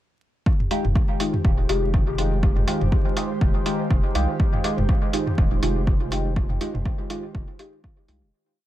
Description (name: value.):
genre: dub techno.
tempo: 122 BPM.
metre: 4/4.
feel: swing 56% on 16ths.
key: F minor.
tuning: A4 = 440 Hz.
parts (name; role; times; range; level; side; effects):
airy breathy pad; sustained chords; 0.5-8.3 s; Eb3 to G4; -31 LUFS; right 1 dB; chorus, sidechain pumping.
electronic kick drum; drums; 0.5-7.9 s; none; -21 LUFS; equal; small room ambience.
electronic woodblock and toms; percussion; 0.5-8.2 s; none; -31 LUFS; right 1 dB; sidechain pumping on perc, small room ambience, sidechain pumping on toms, dub echo.
flickering grainy texture; texture; 0.9-8.3 s; C5; -38 LUFS; equal; built-in reverb, sidechain pumping.
deep mellow chord stab; stabs; 0.7-8.3 s; Ab3 to G4; -28 LUFS; equal; chorus, phaser, sidechain pumping, dub echo.
electronic hi-hat; drums; 0.7-8.2 s; none; -32 LUFS; right 1 dB; small room ambience.
round analog bass; bass; 0.8-8.3 s; Eb1 to C2; -25 LUFS; equal; sidechain pumping.
room: little or no reverb.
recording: dark, warm production, vinyl crackle.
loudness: -20 LUFS.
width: side -14 dB against mid.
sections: 0.5-8.3 groove.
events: fade-out 5.7-8.3.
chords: 0.5 Fm9.